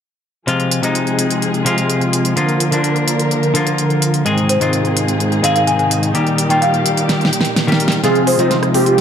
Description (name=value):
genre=EDM, festival progressive house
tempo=127 BPM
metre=4/4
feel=straight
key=F dorian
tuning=A4 = 440 Hz
part: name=semi-hollow electric guitar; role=accompaniment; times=0.5-9.0 s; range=Ab2 to Ab4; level=-16 LUFS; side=left 1 dB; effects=vintage 12-bit sampler grit
part: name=dark symphonic string section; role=sustained chords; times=0.5-9.0 s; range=Bb2 to Bb4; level=-21 LUFS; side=right 1 dB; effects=low-pass filter
part: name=pop drum kit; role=drums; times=0.5-9.0 s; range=hi-hat, rim click, snare drum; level=-20 LUFS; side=right 1 dB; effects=none
part: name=buzzing marimba with medium hard mallets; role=melody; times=4.5-8.5 s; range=C5 to Ab5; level=-19 LUFS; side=left 1 dB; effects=tape echo
part: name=wide unison lead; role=arpeggios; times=8.0-9.0 s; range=G4 to C5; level=-17 LUFS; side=right 1 dB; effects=ensemble chorus
part: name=supersaw chords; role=riff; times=8.0-9.0 s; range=C4 to C5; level=-17 LUFS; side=right 2 dB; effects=analog chorus, low-pass filter
part: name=riser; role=sound effects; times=8.7-9.0 s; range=none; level=-31 LUFS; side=right 1 dB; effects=none
room=moderate lush hall reverb, RT60 1.9 s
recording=none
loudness=-13 LUFS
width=side -8 dB against mid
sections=0.5-8.0 A section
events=drum fill 7.1-8.0, 8.0-9.0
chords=0.5 Fm; 2.4 Bb; 4.3 Ab; 6.1 Eb; 8.0 Fm